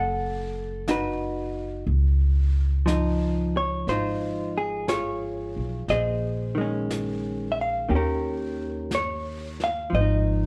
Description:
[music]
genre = jazz ballad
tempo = 60 BPM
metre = 4/4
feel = swing 68% on 8ths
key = unclear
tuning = A4 = 436 Hz
[part]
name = vintage hollow-body jazz guitar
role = accompaniment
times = 0.0-10.5 s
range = D#3 to F#5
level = -28 LUFS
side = equal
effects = none
[part]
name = upright bass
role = bass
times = 0.0-10.5 s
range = F#1 to Eb2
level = -29 LUFS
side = equal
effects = none
[part]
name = jazz brush drum kit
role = drums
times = 0.9-10.5 s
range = brushed snare drum, hi-hat, snare drum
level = -40 LUFS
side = equal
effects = none
[sound]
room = light reverb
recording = none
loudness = -26 LUFS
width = mono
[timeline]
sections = 0.0-10.5 A section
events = none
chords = 0.0 B7; 1.9 Dbadd9; 5.9 Bbm11; 7.9 Eb7; 9.9 Ab5

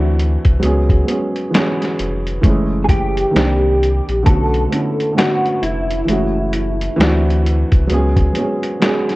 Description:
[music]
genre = lo-fi hip hop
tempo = 66 BPM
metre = 4/4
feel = swing 62% on 16ths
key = unclear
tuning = A4 = 440 Hz
[part]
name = mellow electric guitar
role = melody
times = 0.0-7.4 s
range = E4 to A4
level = -20 LUFS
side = equal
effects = ensemble chorus
[part]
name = dark upright piano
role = accompaniment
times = 0.0-9.2 s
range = D3 to G#4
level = -18 LUFS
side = right 1 dB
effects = cassette tape
[part]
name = sub bass with octave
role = bass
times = 0.0-8.3 s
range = E#1 to D2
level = -18 LUFS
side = equal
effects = none
[part]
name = lo-fi sampler-style drum kit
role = drums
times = 0.2-9.2 s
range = hi-hat, kick drum, snare drum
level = -17 LUFS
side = equal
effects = vintage 12-bit sampler grit
[sound]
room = moderate spring reverb, RT60 2.4 s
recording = worn, warbling old tape, cassette tape, warbly pitch drift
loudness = -14 LUFS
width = side -19 dB against mid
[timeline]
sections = 0.0-9.2 A section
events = none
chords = 0.0 D9; 0.6 C#7sus4; 2.4 F#m9; 3.3 Cm9; 4.3 Bm9; 6.1 F#m9; 7.0 D9; 7.9 C#7sus4

